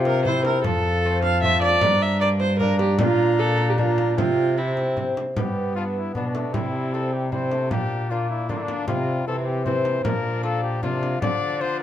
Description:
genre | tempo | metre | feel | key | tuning
classical, renaissance-style consort dance | 154 BPM | 3/4 | straight | unclear | A4 = 439 Hz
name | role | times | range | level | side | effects
warm cornet | melody | 0.0-11.8 s | D4 to Bb5 | -30 LUFS | left 4 dB | none
lute | accompaniment | 0.0-11.8 s | G2 to F4 | -30 LUFS | left 3 dB | none
warm bassoon | accompaniment | 0.0-11.8 s | E3 to F4 | -30 LUFS | left 2 dB | none
warm cello | bass | 0.0-11.8 s | F2 to D3 | -25 LUFS | equal | none
warm viola | second line | 0.1-11.8 s | B3 to F5 | -25 LUFS | right 3 dB | none
frame drum | percussion | 0.1-11.4 s | none | -29 LUFS | right 1 dB | none
room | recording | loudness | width
moderate stone room reverb, RT60 1.4 s | close, detailed microphones | -20 LUFS | side -11 dB against mid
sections
0.0-5.4 A section; 5.4-11.8 B section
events
none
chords
0.3 C; 0.7 F; 1.8 Gm; 3.0 Bb; 4.2 C; 5.4 G; 6.5 C; 7.7 Bb; 8.9 Csus4; 9.3 C; 10.1 Bb; 11.2 Dm

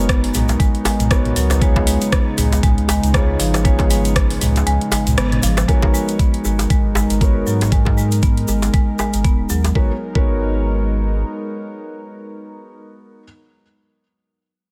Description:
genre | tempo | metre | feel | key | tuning
afro house | 118 BPM | 4/4 | swing 57% on 16ths | G# dorian | A4 = 439 Hz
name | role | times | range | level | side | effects
warm analog pad | sustained chords | 0.0-12.8 s | C#3 to A#4 | -30 LUFS | equal | chorus, sidechain pumping
felt-muted upright piano | stabs | 0.0-13.2 s | B3 to C#5 | -28 LUFS | equal | vintage 12-bit sampler grit, sidechain pumping, digital delay
warm sub bass | bass | 0.0-11.2 s | D#1 to G#2 | -22 LUFS | equal | sidechain pumping
marimba with medium mallets | arpeggios | 0.1-10.3 s | E#3 to B3 | -25 LUFS | equal | sidechain pumping, low-pass filter, digital delay
afro-pop drum kit | drums | 0.1-9.7 s | hi-hat, rim click, toms | -26 LUFS | equal | none
electronic kick drum | drums | 0.1-10.3 s | none | -18 LUFS | equal | none
tube shaker | percussion | 0.1-9.7 s | none | -33 LUFS | equal | none
djembe | percussion | 0.4-9.7 s | none | -28 LUFS | equal | none
room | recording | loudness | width
little or no reverb | none | -17 LUFS | mono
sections
0.0-5.7 A section; 5.7-9.8 B section; 9.8-13.8 C section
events
drop 0.0-5.7; kick drops out 4.7-5.7; band accent 5.2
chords
0.0 Bmaj9; 1.6 C#7; 5.7 G#m11

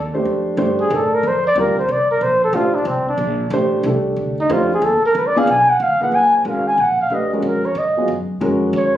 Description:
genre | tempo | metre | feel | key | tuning
modal jazz | 184 BPM | 3/4 | swing 64% on 8ths | Bb major | A4 = 439 Hz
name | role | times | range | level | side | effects
upright bass | bass | 0.0-9.0 s | F#1 to A2 | -26 LUFS | equal | none
dark baby grand piano | accompaniment | 0.1-8.9 s | Bb2 to D5 | -19 LUFS | equal | none
trumpet with bucket mute | melody | 0.8-9.0 s | C4 to Ab5 | -16 LUFS | equal | none
room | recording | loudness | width
light reverb | recorded on a phone in the room, studio reverb, compression | -15 LUFS | side -12 dB against mid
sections
0.0-6.1 A section; 6.1-9.0 A section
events
muted trumpet solo 0.0-9.0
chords
0.0 Bbmaj9; 5.1 Db7b9; 6.1 F#maj9

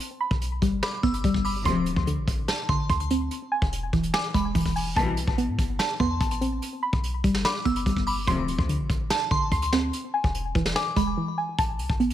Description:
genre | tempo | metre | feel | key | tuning
hip hop, trap | 145 BPM | 4/4 | half-time | A minor | A4 = 441 Hz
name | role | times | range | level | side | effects
vintage brush drum kit | drums | 0.0-12.1 s | hi-hat, kick drum, snare drum | -28 LUFS | equal | none
soft round pluck | arpeggios | 0.2-12.1 s | D3 to C6 | -27 LUFS | right 1 dB | chorus, low-pass filter, ping-pong delay
warm 808-style bass | bass | 0.3-12.1 s | D1 to A2 | -30 LUFS | equal | none
glassy synth bell | second line | 0.8-11.2 s | A5 to E6 | -32 LUFS | equal | chorus, phaser, ping-pong delay
dark symphonic string section | stabs | 1.7-1.9, 5.0-5.3, 8.3-8.6 s | C2 to F3 | -30 LUFS | left 5 dB | ping-pong delay
room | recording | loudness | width
light reverb, small room ambience | none | -23 LUFS | side -11 dB against mid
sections
0.0-11.6 A section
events
break 11.2-11.6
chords
0.0 G; 1.7 D5; 3.3 E; 5.0 Amadd9; 6.6 G; 8.3 D5; 9.9 E; 11.6 Amadd9

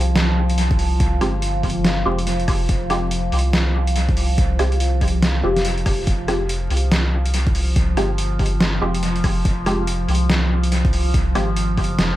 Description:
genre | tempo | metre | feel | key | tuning
deep dubstep | 142 BPM | 4/4 | swing 61% on 16ths, half-time | F minor | A4 = 440 Hz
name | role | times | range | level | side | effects
overtone-sweeping drone | sustained chords | 0.0-12.2 s | F3 | -25 LUFS | right 1 dB | chorus, built-in reverb, phaser
soft dub sub bass | bass | 0.0-12.2 s | F1 to C2 | -20 LUFS | equal | none
trip hop sampler-style drum kit | drums | 0.0-12.1 s | hi-hat, rim click, snare drum | -23 LUFS | equal | dub echo
electronic kick drum | drums | 0.7-11.9 s | none | -20 LUFS | equal | none
filtered dub chord stab | stabs | 1.2-11.5 s | Ab3 to G4 | -26 LUFS | equal | phaser, ensemble chorus, dub echo
room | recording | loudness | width
light reverb, digital ambience | echo-heavy mix, vinyl crackle | -17 LUFS | side -15 dB against mid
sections
0.0-12.2 A section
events
none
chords
0.0 Fmadd9

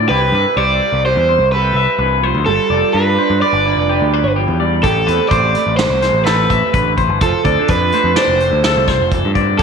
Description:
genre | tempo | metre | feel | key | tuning
math rock and midwest emo | 126 BPM | 5/4 | straight | unclear | A4 = 442 Hz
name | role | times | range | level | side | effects
electric guitar through a small old amp | accompaniment | 0.0-9.6 s | A2 to B4 | -21 LUFS | right 12 dB | analog chorus
twangy electric guitar | arpeggios | 0.0-9.6 s | G4 to E5 | -19 LUFS | left 11 dB | slapback echo
growling picked electric bass | bass | 0.0-9.6 s | F1 to G2 | -18 LUFS | left 1 dB | overdrive
overdriven semi-hollow guitar | melody | 0.1-9.6 s | A4 to D5 | -16 LUFS | right 2 dB | spring reverb, slapback echo
vintage brush drum kit | drums | 4.8-9.6 s | hi-hat, kick drum, snare drum | -20 LUFS | right 2 dB | none
room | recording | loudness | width
moderate echo chamber reverb, RT60 1.8 s, small room ambience | 1960s-style stereo with parts hard left and right | -12 LUFS | side -6 dB against mid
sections
0.0-9.6 A section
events
none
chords
0.1 Cmaj7; 2.5 G7; 4.8 Am9; 7.2 F6

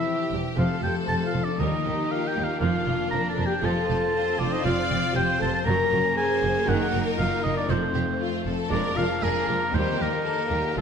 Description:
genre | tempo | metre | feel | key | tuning
cinematic, heroic adventure film score | 118 BPM | 4/4 | straight | unclear | A4 = 439 Hz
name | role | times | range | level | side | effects
rich studio violin section | melody | 0.0-10.8 s | C4 to F4 | -35 LUFS | left 4 dB | none
clear oboe | second line | 0.0-10.8 s | A4 to Bb5 | -28 LUFS | right 1 dB | none
rich symphonic violin section | second line | 0.0-10.8 s | D4 to D5 | -32 LUFS | left 2 dB | none
warm French horn section | sustained chords | 0.0-10.8 s | A3 to Bb4 | -29 LUFS | left 2 dB | none
concert harp | arpeggios | 0.0-10.8 s | F2 to Bb4 | -32 LUFS | left 9 dB | none
rich symphonic viola section | accompaniment | 0.3-10.8 s | Eb3 to C4 | -32 LUFS | right 2 dB | none
warm symphonic cello section | bass | 0.3-10.8 s | Eb2 to Gb2 | -32 LUFS | right 3 dB | none
warm symphonic double bass section | bass | 0.3-10.8 s | E1 to Eb2 | -31 LUFS | right 3 dB | none
room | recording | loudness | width
wet scoring stage reverb, RT60 1.6 s | none | -22 LUFS | side -7 dB against mid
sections
0.0-10.8 A section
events
none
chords
0.0 Cadd9/E; 0.6 F; 1.6 Eb; 2.6 Bb/F; 3.6 F; 5.7 Gb; 6.7 Ebm/Gb; 7.7 F; 8.7 Bb7/F; 9.7 Eb

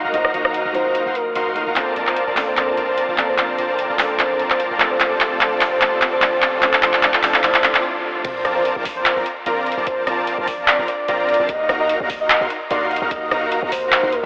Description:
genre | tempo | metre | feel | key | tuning
future bass | 148 BPM | 4/4 | swing 53% on 16ths, half-time | Bb major | A4 = 440 Hz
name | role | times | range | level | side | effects
felt-muted upright piano | accompaniment | 0.0-8.3 s | F3 to Eb5 | -29 LUFS | equal | sidechain pumping
airy breathy pad | sustained chords | 0.0-7.8 s | C3 to F5 | -35 LUFS | equal | none
dense compressed supersaw | riff | 0.0-14.3 s | C4 to C6 | -21 LUFS | equal | sidechain pumping, low-pass filter
warm 808-style bass | bass | 0.0-14.3 s | F1 to Eb2 | -34 LUFS | equal | sidechain pumping
soft octave-layered synth lead | melody | 0.1-14.3 s | Bb4 to Eb5 | -22 LUFS | equal | chorus, sidechain pumping, digital delay
trap drum kit | drums | 0.1-14.2 s | crash cymbal, handclaps, hi-hat, rim click, toms | -19 LUFS | equal | high-pass filter on hats, high-pass filter on snare, high-pass filter on toms, high-pass filter on cymbals
riser and sub drop | sound effects | 4.3-9.9 s | none | -32 LUFS | equal | none
electronic kick drum | drums | 8.2-13.8 s | none | -32 LUFS | equal | none
room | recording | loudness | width
wet shimmer reverb, RT60 6.0 s | telephone sound | -16 LUFS | side -29 dB against mid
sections
0.0-8.2 A section; 8.2-14.3 B section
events
build-up 0.0-8.2; drum fill 1.8-7.8, 8.0; stop 7.8-8.2; drop 8.2-14.3; impact 8.2-9.9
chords
0.0 Ebmadd9; 1.8 Bbmaj9; 4.8 F13; 8.2 Bbmaj9; 11.5 Ebmadd9

